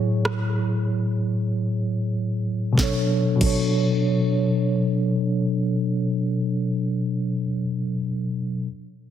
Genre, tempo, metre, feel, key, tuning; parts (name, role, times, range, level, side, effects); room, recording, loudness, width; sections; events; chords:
contemporary R&B; free time; B dorian; A4 = 440 Hz
bell-like tine electric piano; accompaniment; 0.0-8.7 s; A2 to C#5; -21 LUFS; equal; medium stereo tremolo, low-pass filter
smooth R&B drum kit; drums; 0.3-3.6 s; crash cymbal, kick drum, rim click, snare drum; -26 LUFS; equal
light reverb, digital ambience; heavily compressed radio sound, multiband compression; -21 LUFS; side -10 dB against mid
0.0-2.8 A section; 2.8-6.2 B section
filter sweep on tine electric piano 0.0-2.8; drums muted 1.9-2.8
0.0 F#m7/A; 2.8 Bm9